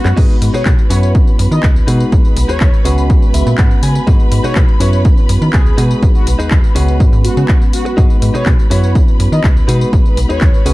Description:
filtered disco house; 123 BPM; 4/4; straight; A4 = 442 Hz
analog synth brass; melody; 0.0-10.7 s; F#4 to D#5; -24 LUFS; left 1 dB; chorus, sidechain pumping, dub echo
tine electric piano; accompaniment; 0.0-10.7 s; G#3 to F#4; -21 LUFS; equal; phaser, sidechain pumping
warm studio string section; sustained chords; 0.0-10.7 s; B4 to B5; -25 LUFS; right 1 dB; vintage 12-bit sampler grit, sidechain pumping
direct-recorded clean electric guitar; riff; 0.1-10.7 s; C#4 to G#5; -24 LUFS; left 1 dB; vintage 12-bit sampler grit, sidechain pumping
slap-like FM bass; bass; 0.1-10.7 s; B1 to D#3; -14 LUFS; equal; sidechain pumping
house drum kit; drums; 0.1-10.7 s; crash cymbal, handclaps, hi-hat, tambourine; -24 LUFS; left 1 dB; sidechain pumping on perc, small room ambience, sidechain pumping on hats, sidechain pumping on cymbals
electronic kick drum; drums; 0.2-10.5 s; -11 LUFS; equal; small room ambience
digital ambience; dark, warm production; -9 LUFS; side -19 dB against mid
0.0-10.7 A section
drum fill 0.0; clean electric guitar fill 3.1-4.1, 10.4-10.7
0.2 G#m7; 0.9 F#7sus4; 1.9 B6; 2.9 C#7sus4; 4.1 G#m7; 4.8 F#7sus4; 5.8 B6; 6.8 C#7sus4; 8.0 G#m7; 8.7 F#7sus4; 9.7 B6
| 0.17 0.66 1.15 1.64 | 2.12 2.61 3.10 3.59 | 4.08 4.56 5.05 5.54 | 6.03 6.51 7.00 7.49 | 7.98 8.46 8.95 9.44 | 9.93 10.42

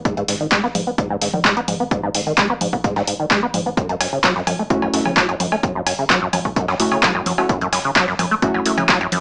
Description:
acid house; 129 BPM; 4/4; straight; A4 = 438 Hz
acid bass, saw; riff; 0.1-9.2 s; F#2 to B3; -23 LUFS; equal; overdrive, analog chorus, sidechain pumping, tape echo
breakbeat sampler-style drum kit; drums; 0.1-9.2 s; hi-hat, snare drum; -31 LUFS; equal; high-pass filter on snare, sidechain pumping on hats, high-pass filter on hats
electronic kick drum; drums; 0.1-9.0 s; -25 LUFS; equal
saturated sub bass; bass; 0.3-9.2 s; E1 to G#1; -39 LUFS; equal; sidechain pumping
punchy analog drum machine; drums; 0.3-9.2 s; congas, cowbell, handclaps, hi-hat; -21 LUFS; equal
deep mellow chord stab; stabs; 4.7-8.8 s; A3 to F#4; -24 LUFS; equal; analog chorus, tape echo
moderate studio reverb, RT60 0.6 s; small speaker sound; -19 LUFS; mono
0.0-9.2 A section
filter sweep on acid bass 0.0-9.2
0.0 G#7(no3); 3.8 F#m7
| 0.05 0.52 0.98 1.45 | 1.91 2.38 2.84 3.31 | 3.77 4.24 4.70 5.17 | 5.63 6.10 6.56 7.03 | 7.49 7.96 8.42 8.89

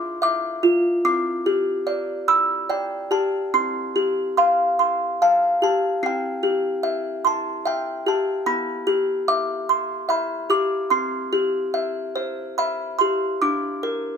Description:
children's music, lullaby; 73 BPM; 3/4; rubato; C major; A4 = 440 Hz
music box; solo; 0.0-14.2 s; B3 to E6; -20 LUFS; equal
light reverb; close, detailed microphones; -20 LUFS; side -7 dB against mid
0.0-13.4 A section
0.0 Dmadd9; 1.0 Gsus4; 1.9 G; 3.5 Fsus2; 6.0 C; 8.5 G6; 10.9 C; 13.4 Bb
0.22 | 1.04 1.86 2.69 | 3.54 4.38 5.21 | 6.03 6.84 7.65 | 8.46 9.27 10.09 | 10.90 11.73 12.57 | 13.41

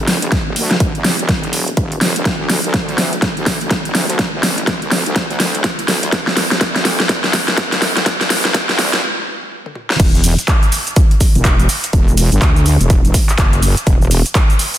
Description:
bass house; 124 BPM; 4/4; swing 61% on 16ths; A4 = 440 Hz
wobble bass; bass; 0.0-14.2 s; E1 to E2; -18 LUFS; equal; chorus, sidechain pumping, high-pass filter
big-room dance drum kit; drums; 0.1-14.8 s; cabasa, crash cymbal, handclaps, hi-hat, snare drum, toms; -16 LUFS; equal; overdrive, studio reverb
electronic kick drum; drums; 0.3-14.5 s; -14 LUFS; equal; overdrive, studio reverb
light reverb; dense, heavily limited modern master, high-pass filter; -12 LUFS; side -12 dB against mid
0.0-10.0 A section; 10.0-14.8 B section
build-up 0.0-10.0; drum fill 0.0-9.0, 9.6-10.0; stop 9.0-10.0; drop 10.0-14.8
| 0.32 0.80 1.29 1.77 | 2.25 2.74 3.22 3.71 | 4.19 4.67 5.16 5.64 | 6.13 6.61 7.09 7.58 | 8.06 8.54 9.03 9.51 | 10.00 10.48 10.96 11.45 | 11.93 12.42 12.90 13.38 | 13.87 14.35

